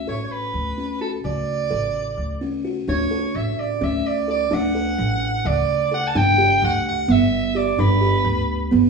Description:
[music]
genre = contemporary instrumental, chamber music in an uneven meter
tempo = 257 BPM (eighths)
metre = 7/8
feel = straight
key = D major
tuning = A4 = 440 Hz
[part]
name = raspy soprano saxophone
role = melody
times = 0.0-8.7 s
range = A4 to A5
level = -22 LUFS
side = right 2 dB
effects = none
[part]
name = upright bass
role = bass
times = 0.0-8.9 s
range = G1 to D2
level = -24 LUFS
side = right 1 dB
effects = none
[part]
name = buzzing kalimba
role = arpeggios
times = 0.1-8.9 s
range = C#3 to A4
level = -23 LUFS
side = right 2 dB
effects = none
[sound]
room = wet studio reverb, RT60 0.9 s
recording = heard from further back in the room, small room reverb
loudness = -18 LUFS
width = side -4 dB against mid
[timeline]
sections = 0.0-2.9 A section; 2.9-8.9 B section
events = none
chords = 0.0 Dmaj7(no3); 2.9 Dmaj7; 6.1 G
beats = 0.08 0.31 0.55 0.78 1.01 | 1.25 1.48 1.72 1.95 2.18 2.42 2.65 | 2.88 3.12 3.35 3.58 3.82 4.05 4.28 | 4.52 4.75 4.98 5.21 5.45 5.68 5.92 | 6.15 6.38 6.61 6.85 7.08 7.31 7.55 | 7.78 8.01 8.25 8.48 8.71

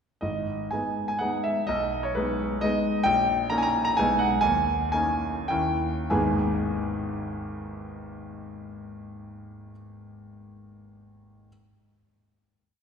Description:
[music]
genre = classical, romantic triple-time dance for piano with dotted rhythms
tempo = 94-138 BPM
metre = 3/4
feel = rubato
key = G# minor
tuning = A4 = 441 Hz
[part]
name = clear concert grand piano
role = solo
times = 0.2-11.5 s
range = G#1 to A#5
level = -25 LUFS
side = equal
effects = none
[sound]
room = wet concert hall reverb, RT60 2.5 s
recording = recorded in a church or concert hall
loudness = -23 LUFS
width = side -6 dB against mid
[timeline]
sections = 0.2-6.1 A section; 6.1-9.4 final chord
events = slowing down 2.4-6.1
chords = 0.2 G#m; 1.7 G#m/B; 3.1 D#7/A#; 4.0 G#m/B; 4.4 D#7sus4; 5.5 D#7b9; 6.1 G#m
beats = | 0.23 0.73 1.20 | 1.67 2.15 2.62 | 3.06 3.52 3.99 | 4.44 4.94 5.51 | 6.11 6.69 7.25 | 7.78 8.34 8.91

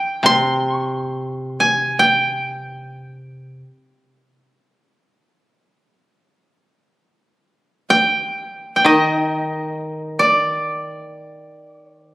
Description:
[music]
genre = japanese traditional, Japanese chamber music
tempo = free time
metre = none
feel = none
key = G miyako bushi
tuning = A4 = 441 Hz
[part]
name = koto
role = melody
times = 0.0-12.1 s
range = D5 to C6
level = -16 LUFS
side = right 1 dB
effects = none
[part]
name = koto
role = accompaniment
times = 0.2-3.6, 8.8-12.1 s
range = C3 to Eb3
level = -21 LUFS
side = equal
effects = none
[sound]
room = moderate scoring stage reverb, RT60 1.7 s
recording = recorded on a phone in the room, club reverb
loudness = -16 LUFS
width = side -17 dB against mid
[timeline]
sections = 0.0-12.1 A section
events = none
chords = none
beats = free time

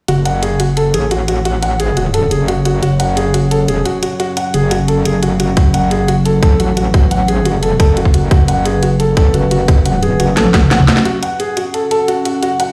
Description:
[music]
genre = dark technical drum and bass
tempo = 175 BPM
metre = 4/4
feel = straight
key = F# minor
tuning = A4 = 440 Hz
[part]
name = dark analog pad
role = sustained chords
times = 1.9-12.7 s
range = F#3 to F#5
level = -22 LUFS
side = equal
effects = chorus, phaser, sidechain pumping
[part]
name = felt-muted upright piano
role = arpeggios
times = 0.1-12.7 s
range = F#4 to F#5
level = -19 LUFS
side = equal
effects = sidechain pumping, low-pass filter, tape echo
[part]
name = metallic wobble bass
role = bass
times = 0.1-10.9 s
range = E1 to A1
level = -18 LUFS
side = equal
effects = chorus, overdrive, sidechain pumping
[part]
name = drum and bass drum kit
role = drums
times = 0.1-12.7 s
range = hi-hat, snare drum, toms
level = -20 LUFS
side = equal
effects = overdrive, small room ambience
[part]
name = electronic kick drum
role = drums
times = 5.6-10.9 s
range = none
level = -13 LUFS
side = equal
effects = overdrive, small room ambience
[sound]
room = moderate digital room reverb, RT60 1.0 s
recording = played on a big sound system in a bare room, large studio reverb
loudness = -14 LUFS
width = mono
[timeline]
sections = 0.1-11.1 A section; 11.1-12.7 B section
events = drum fill 10.4-11.1; build-up 11.1-12.7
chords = 0.1 F#5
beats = | 0.08 0.43 0.77 1.11 | 1.46 1.80 2.14 2.48 | 2.83 3.17 3.51 3.85 | 4.20 4.54 4.88 5.23 | 5.57 5.91 6.25 6.60 | 6.94 7.28 7.63 7.97 | 8.31 8.65 9.00 9.34 | 9.68 10.03 10.37 10.71 | 11.05 11.40 11.74 12.08 | 12.43

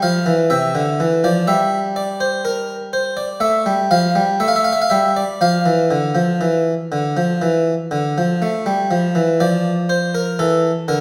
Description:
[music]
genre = classical, baroque-style two-part invention for harpsichord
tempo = 61 BPM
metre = 4/4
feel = straight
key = D minor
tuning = A4 = 440 Hz
[part]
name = harpsichord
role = solo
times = 0.0-11.0 s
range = C3 to F5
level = -18 LUFS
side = equal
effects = none
[sound]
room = wet recital hall reverb, RT60 1.3 s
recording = recorded in a church or concert hall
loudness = -18 LUFS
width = mono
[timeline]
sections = 0.0-9.4 A section; 9.4-11.0 B section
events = none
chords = 0.0 Am (rootless); 1.5 Edim/G; 3.4 Fmaj9; 4.4 A5; 5.4 Dm; 9.4 Dm/F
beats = 0.51 | 1.48 2.45 3.42 4.41 | 5.40 6.42 7.42 8.42 | 9.41 10.40

